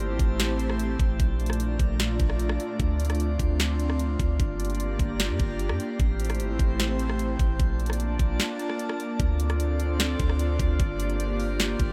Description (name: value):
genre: hip hop, atmospheric cloud-rap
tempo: 150 BPM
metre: 4/4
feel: half-time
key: D minor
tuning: A4 = 439 Hz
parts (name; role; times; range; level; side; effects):
- airy breathy pad; sustained chords; 0.0-11.9 s; Bb2 to A5; -33 LUFS; equal; chorus, sidechain pumping
- soft 808-style bass; bass; 0.0-11.9 s; G1 to G2; -29 LUFS; equal; none
- trap drum kit; drums; 0.0-11.9 s; hi-hat, kick drum, rim click, snare drum; -30 LUFS; equal; none
- drifting glass-harmonics texture; texture; 0.0-11.9 s; A3 to F6; -43 LUFS; equal; chorus, built-in reverb
room: digital ambience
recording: faint mains hum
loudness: -26 LUFS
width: mono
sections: 0.0-9.2 A section; 9.2-11.9 B section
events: kick muted 8.4-9.2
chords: 0.0 Am7; 1.2 Bbmaj7; 2.8 Dm7; 4.4 Gm7; 6.0 Am7; 7.6 Bbmaj7; 9.2 Dm7; 10.8 Gm7